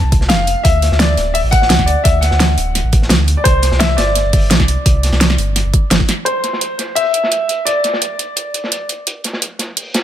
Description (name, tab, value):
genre	liquid drum and bass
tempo	171 BPM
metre	4/4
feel	straight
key	unclear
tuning	A4 = 441 Hz
part	warm baby grand piano	melody	0.0-8.8 s	C5 to F#5	-17 LUFS	left 2 dB	digital delay
part	sub bass with octave	bass	0.0-6.0 s	D1 to D2	-15 LUFS	equal	none
part	crunchy breakbeat drum kit	drums	0.1-10.0 s	hi-hat, snare drum	-23 LUFS	equal	high-pass filter on hats, low-pass filter on hats, high-pass filter on snare, low-pass filter on snare, high-pass filter on room, low-pass filter on room
part	electronic kick drum	drums	0.1-6.1 s	none	-14 LUFS	equal	overdrive
part	pop drum kit	drums	0.1-10.0 s	hi-hat, snare drum	-17 LUFS	right 1 dB	overdrive
room	light reverb, small room ambience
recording	none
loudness	-12 LUFS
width	side -11 dB against mid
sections	0.0-6.3 A section; 6.3-10.0 B section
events	none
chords	0.0 F5; 0.6 Dadd9; 3.5 Csus2; 6.3 N.C.